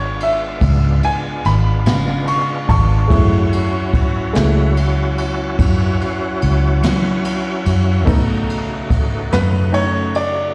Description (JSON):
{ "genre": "slow blues", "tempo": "48 BPM (dotted quarters)", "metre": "12/8", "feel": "straight", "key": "unclear", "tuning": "A4 = 442 Hz", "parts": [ { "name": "bright upright piano", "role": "accompaniment", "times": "0.0-10.5 s", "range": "G#3 to C#6", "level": "-23 LUFS", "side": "equal", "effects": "slapback echo" }, { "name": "overdriven tonewheel organ", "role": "sustained chords", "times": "0.0-10.5 s", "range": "C#3 to F#4", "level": "-26 LUFS", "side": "equal", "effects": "slow rotary speaker, chorus vibrato" }, { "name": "vintage muted fingered electric bass", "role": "bass", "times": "0.0-10.5 s", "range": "G#1 to F#3", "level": "-19 LUFS", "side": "equal", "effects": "none" }, { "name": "jazz brush drum kit", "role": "drums", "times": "0.2-10.3 s", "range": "kick drum, ride cymbal, snare drum", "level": "-23 LUFS", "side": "equal", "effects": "none" } ], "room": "little or no reverb", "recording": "live gig heard through the venue's PA, recital hall reverb", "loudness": "-16 LUFS", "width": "mono", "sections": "0.0-10.5 A section", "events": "upright piano solo 0.0-10.5", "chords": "0.0 C#7b9; 3.1 F#m7; 8.1 B9", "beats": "0.62 1.86 | 3.10 4.34 5.59 6.83 | 8.08 9.33" }